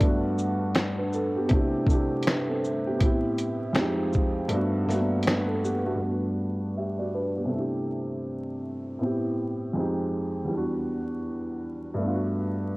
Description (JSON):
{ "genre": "lo-fi hip hop", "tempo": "80 BPM", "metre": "4/4", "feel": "swing 58% on 16ths", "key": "G major", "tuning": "A4 = 441 Hz", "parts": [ { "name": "felt-muted upright piano", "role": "accompaniment", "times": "0.0-12.8 s", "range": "E2 to E5", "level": "-26 LUFS", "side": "equal", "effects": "cassette tape, low-pass filter" }, { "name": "glass harmonica", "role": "sustained chords", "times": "0.0-6.0 s", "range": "G3 to F#5", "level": "-36 LUFS", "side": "equal", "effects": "low-pass filter, cassette tape" }, { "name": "dusty soul sampler-style drum kit", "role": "drums", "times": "0.0-5.8 s", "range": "finger snaps, hi-hat, kick drum, shaker, snare drum", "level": "-26 LUFS", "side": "equal", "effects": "cassette tape" } ], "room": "moderate spring reverb, RT60 2.1 s", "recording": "home recording on cassette, vinyl crackle", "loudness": "-25 LUFS", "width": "side -22 dB against mid", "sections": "0.0-6.0 A section; 6.0-12.8 B section", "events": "kick muted 4.5-6.0; filter sweep on felt piano 6.0-12.8", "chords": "0.0 Gmaj7; 1.5 C69; 3.0 Am9; 3.8 Fm9; 4.5 Gmaj9; 6.0 Gmaj7; 7.5 C69; 9.0 Am9; 9.8 Fm9; 10.5 Em9; 12.0 Gmaj7" }